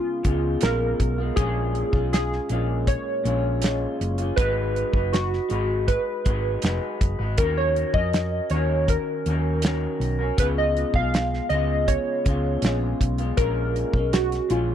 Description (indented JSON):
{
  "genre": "indie pop, bedroom pop",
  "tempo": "80 BPM",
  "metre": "4/4",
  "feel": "straight",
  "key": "Eb minor",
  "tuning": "A4 = 440 Hz",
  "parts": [
    { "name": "warbly lo-fi synth keys", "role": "melody", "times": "0.0-14.7 s", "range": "F4 to F5", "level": "-26 LUFS", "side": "equal", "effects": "analog chorus, tape echo" },
    { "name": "electric guitar through a small old amp", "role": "accompaniment", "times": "0.0-14.7 s", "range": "Bb2 to Cb5", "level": "-28 LUFS", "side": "left 1 dB", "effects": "wide subtle chorus, warbly pitch drift" },
    { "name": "hollow-body short-scale fingered electric bass", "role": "bass", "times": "0.2-14.7 s", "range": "F1 to F2", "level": "-26 LUFS", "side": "equal", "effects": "none" },
    { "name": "damped 70s drum kit", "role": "drums", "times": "0.2-14.7 s", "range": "hi-hat, kick drum, snare drum", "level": "-23 LUFS", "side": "equal", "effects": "none" }
  ],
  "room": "light reverb",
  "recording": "dry, close 1970s-style studio recording",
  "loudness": "-21 LUFS",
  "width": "side -10 dB against mid",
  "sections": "0.0-14.7 A section",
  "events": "none",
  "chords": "0.0 Db7; 1.4 Bbm7; 4.4 Abm7; 7.4 Ebm7; 10.4 Db7",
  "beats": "0.62 | 1.37 2.12 2.87 3.62 | 4.37 5.12 5.88 6.62 | 7.38 8.13 8.88 9.63 | 10.38 11.13 11.88 12.63 | 13.38 14.13"
}